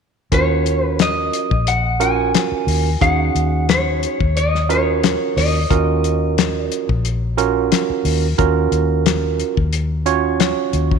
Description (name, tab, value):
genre	straight-eighth soul blues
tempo	89 BPM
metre	4/4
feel	swing 54% on 16ths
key	Eb minor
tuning	A4 = 438 Hz
part	electric guitar through a small old amp	melody	0.3-7.3 s	Db5 to Ab5	-20 LUFS	left 2 dB	spring reverb
part	tine electric piano	accompaniment	0.3-11.0 s	Db4 to Db5	-20 LUFS	right 12 dB	medium stereo tremolo
part	vintage muted fingered electric bass	bass	0.3-11.0 s	Bb1 to Eb2	-20 LUFS	left 2 dB	none
part	cloth-damped thuddy drum kit	drums	0.3-11.0 s	hi-hat, kick drum, snare drum	-20 LUFS	left 7 dB	none
room	light reverb, studio reverb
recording	1960s-style stereo with parts hard left and right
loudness	-15 LUFS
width	side -6 dB against mid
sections	0.3-11.0 A section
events	none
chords	0.3 Ebm7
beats	| 0.32 0.99 1.66 2.34 | 3.01 3.68 4.36 5.03 | 5.70 6.37 7.04 7.72 | 8.39 9.06 9.73 10.40